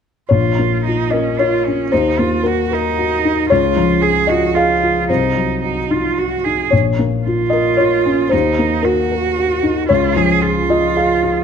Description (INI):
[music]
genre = neoclassical piano and strings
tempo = 113 BPM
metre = 3/4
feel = rubato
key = Bb minor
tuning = A4 = 440 Hz
[part]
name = clear cello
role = second line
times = 0.3-11.4 s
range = Db4 to Ab4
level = -18 LUFS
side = right 8 dB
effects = none
[part]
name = felt-muted upright piano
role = accompaniment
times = 0.3-11.4 s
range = Bb1 to F5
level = -15 LUFS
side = left 2 dB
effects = none
[sound]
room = moderate large studio reverb, RT60 1.4 s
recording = none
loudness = -13 LUFS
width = side -7 dB against mid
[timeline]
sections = 0.3-11.4 A section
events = none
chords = 0.3 Bbm; 1.9 Ebm; 3.5 Db; 5.1 Cdim; 6.7 Bbm; 8.3 Ebm; 9.9 Db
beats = | 0.30 0.84 1.38 | 1.91 2.44 2.97 | 3.50 4.02 4.54 | 5.08 5.63 6.17 | 6.72 7.26 7.79 | 8.32 8.85 9.38 | 9.90 10.42 10.95